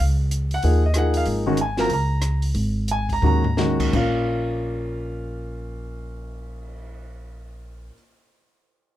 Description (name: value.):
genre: modal jazz.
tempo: 162-191 BPM.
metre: 4/4.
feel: swing 63% on 8ths.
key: Bb minor.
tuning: A4 = 437 Hz.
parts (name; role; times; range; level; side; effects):
upright bass; bass; 0.0-7.9 s; Ab1 to Eb2; -24 LUFS; equal; none.
compact cocktail drum kit; drums; 0.0-6.8 s; crash cymbal, cymbal swell, hi-hat, kick drum, rim click, snare drum, toms; -30 LUFS; left 2 dB; none.
warm concert grand piano; accompaniment; 0.5-7.9 s; Bb2 to Bb5; -23 LUFS; equal; none.
room: light reverb.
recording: close, detailed microphones.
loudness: -19 LUFS.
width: side -13 dB against mid.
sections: 0.0-3.9 A section; 3.9-6.9 B section.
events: slowing down 1.3-3.9; drum fill 3.2-3.6.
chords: 0.0 Ab13sus4; 3.9 Bbm.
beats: | 0.01 0.32 0.63 0.95 | 1.26 1.58 1.90 2.22 | 2.55 2.88 3.22 3.58 | 3.94 4.31 4.68 5.05 | 5.42 5.79 6.16 6.53.